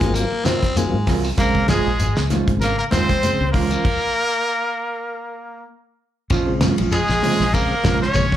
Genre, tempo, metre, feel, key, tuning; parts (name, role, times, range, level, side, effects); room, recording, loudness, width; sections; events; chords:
afrobeat; 97 BPM; 4/4; swing 55% on 16ths; Bb minor; A4 = 440 Hz
bright trumpet; melody; 0.0-8.4 s; Ab4 to Db5; -22 LUFS; left 1 dB; slapback echo
growling baritone saxophone; second line; 0.0-1.2 s; Ab3 to C4; -24 LUFS; left 3 dB; slapback echo
raspy tenor saxophone; second line; 0.0-8.4 s; Ab3 to Db4; -26 LUFS; right 2 dB; slapback echo
tonewheel organ; accompaniment; 0.0-8.3 s; Db3 to F4; -26 LUFS; left 2 dB; slow rotary speaker, chorus vibrato, slapback echo
clean electric guitar; arpeggios; 0.0-8.4 s; C3 to Gb3; -30 LUFS; left 6 dB; slapback echo
mellow electric guitar; stabs; 0.0-8.1 s; Gb3 to C5; -24 LUFS; right 7 dB; slapback echo
fingered electric bass; bass; 0.0-8.4 s; Ab1 to Ab2; -23 LUFS; equal
damped 70s drum kit; drums; 0.0-8.4 s; crash cymbal, hi-hat, kick drum, ride cymbal, snare drum; -23 LUFS; equal
congas; percussion; 0.1-8.3 s; -30 LUFS; left 4 dB
shekere; percussion; 0.1-8.3 s; -27 LUFS; left 1 dB
light reverb; live gig heard through the venue's PA, club reverb; -17 LUFS; side -11 dB against mid
0.0-6.3 A section; 6.3-8.4 B section
stop 3.8-6.3
0.0 Ab13; 1.4 Bbm9; 3.8 N.C.; 6.3 Bbm9